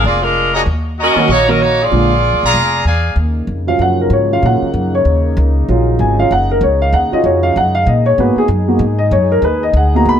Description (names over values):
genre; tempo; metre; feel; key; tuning
jazz, big band swing; 192 BPM; 4/4; swing 60% on 8ths; Eb minor; A4 = 440 Hz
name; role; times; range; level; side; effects
clear saxophone section; melody; 0.0-2.9 s; F3 to Eb5; -13 LUFS; right 1 dB; none
upright bass; bass; 0.0-10.2 s; F1 to Bb2; -15 LUFS; equal; none
clear trumpet section; stabs; 0.5-3.2 s; Gb4 to Db6; -17 LUFS; left 1 dB; none
warm baby grand piano; accompaniment; 1.2-10.2 s; D3 to Cb6; -14 LUFS; equal; none
mellow trombone section; sustained chords; 3.2-10.2 s; Db3 to Ab4; -22 LUFS; left 1 dB; none
room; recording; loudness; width
light reverb; none; -11 LUFS; side -8 dB against mid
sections
0.0-3.2 A section; 3.2-10.2 B section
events
grand piano solo 3.2-10.2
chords
0.0 Bb7; 0.7 Ebm7; 1.9 Bb7; 3.2 Ebm7; 8.2 Abm7